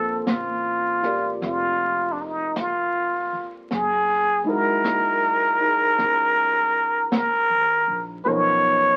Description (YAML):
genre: jazz ballad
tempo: 53 BPM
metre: 4/4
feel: swing 66% on 8ths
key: unclear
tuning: A4 = 440 Hz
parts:
  - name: trumpet with plunger mute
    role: melody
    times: 0.0-9.0 s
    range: D4 to C#5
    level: -22 LUFS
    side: equal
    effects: none
  - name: warm concert grand piano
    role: accompaniment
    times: 0.0-9.0 s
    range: E#3 to D5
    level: -31 LUFS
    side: equal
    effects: none
  - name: upright bass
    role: bass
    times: 0.0-9.0 s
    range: F1 to Eb2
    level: -42 LUFS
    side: equal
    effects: none
  - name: jazz brush drum kit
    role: drums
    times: 0.3-9.0 s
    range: brushed snare drum, hi-hat, snare drum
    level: -30 LUFS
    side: equal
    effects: none
room: moderate studio reverb, RT60 0.6 s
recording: very old 78 rpm record, vinyl crackle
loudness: -22 LUFS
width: mono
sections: 0.0-9.0 A section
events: none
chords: 0.0 Bbmaj9; 3.7 Gb13; 8.3 Bmaj9#11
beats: 0.26 1.41 2.56 | 3.70 4.84 5.98 7.12 | 8.26